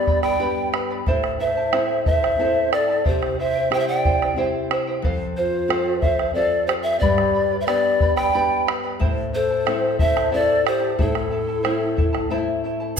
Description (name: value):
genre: andean folk, Andean ensemble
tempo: 91 BPM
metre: 3/4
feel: straight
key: A minor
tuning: A4 = 440 Hz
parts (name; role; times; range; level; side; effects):
- mellow polished pan flute; melody; 0.0-12.3 s; A4 to G5; -21 LUFS; left 1 dB; none
- mellow hollow large quena; second line; 0.0-12.3 s; E4 to D5; -27 LUFS; right 4 dB; none
- charango; accompaniment; 0.0-13.0 s; E4 to B5; -27 LUFS; right 2 dB; none
- nylon-string guitar; accompaniment; 0.0-13.0 s; F2 to A4; -28 LUFS; left 4 dB; none
- bombo; percussion; 0.1-12.4 s; none; -24 LUFS; right 1 dB; none
room: wet recital hall reverb, RT60 1.4 s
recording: recorded in a church or concert hall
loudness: -18 LUFS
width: side -6 dB against mid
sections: 0.0-13.0 A section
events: none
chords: 0.0 G; 1.1 Am; 3.0 C; 5.0 F; 7.0 G; 9.0 Am